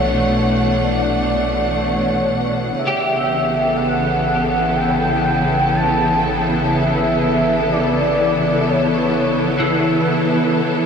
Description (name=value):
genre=ambient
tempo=61 BPM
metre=4/4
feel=straight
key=unclear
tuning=A4 = 438 Hz
part: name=warm velvety synth lead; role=melody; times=0.0-10.2 s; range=C#5 to A5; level=-20 LUFS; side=equal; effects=chorus, ping-pong delay
part: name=clear studio string section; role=sustained chords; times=0.0-10.9 s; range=B2 to F#5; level=-18 LUFS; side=left 1 dB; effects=none
part: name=warm sub bass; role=bass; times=0.0-10.6 s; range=A1 to B1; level=-30 LUFS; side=equal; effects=none
part: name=bowed-like drone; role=drone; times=0.8-10.9 s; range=B3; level=-26 LUFS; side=right 3 dB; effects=built-in reverb
part: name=electric guitar at the edge of break-up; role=arpeggios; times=2.9-10.9 s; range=E3 to G4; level=-23 LUFS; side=equal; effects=ensemble chorus, ping-pong delay
room=wet huge ambient reverb, RT60 7.9 s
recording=dreamy mix soaked in reverb, cassette tape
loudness=-15 LUFS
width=side -6 dB against mid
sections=0.0-10.7 A section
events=fade-in on synth drone 0.0-10.7; fade-out on sub bass 0.0-10.7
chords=0.0 Bmadd9; 2.8 A